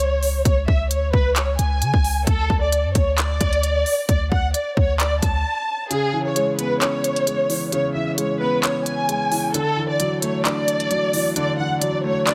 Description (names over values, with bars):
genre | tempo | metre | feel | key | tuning
hip hop, trap | 132 BPM | 4/4 | half-time | C# phrygian | A4 = 442 Hz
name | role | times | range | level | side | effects
dark studio violin section | melody | 0.0-12.3 s | G#4 to A5 | -24 LUFS | equal | none
warm 808-style bass | bass | 0.0-5.4 s | C#2 to C#3 | -24 LUFS | equal | none
trap drum kit | drums | 0.0-12.3 s | handclaps, hi-hat, kick drum | -24 LUFS | equal | none
dark baby grand piano | accompaniment | 5.9-12.3 s | C#3 to D4 | -26 LUFS | equal | none
room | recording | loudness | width
light reverb, studio ambience | none | -21 LUFS | mono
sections
0.0-12.3 A section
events
break 5.5-5.9; kick muted 5.9-12.3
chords
0.0 C#5; 2.3 D5; 5.9 C#m7; 9.5 Dadd9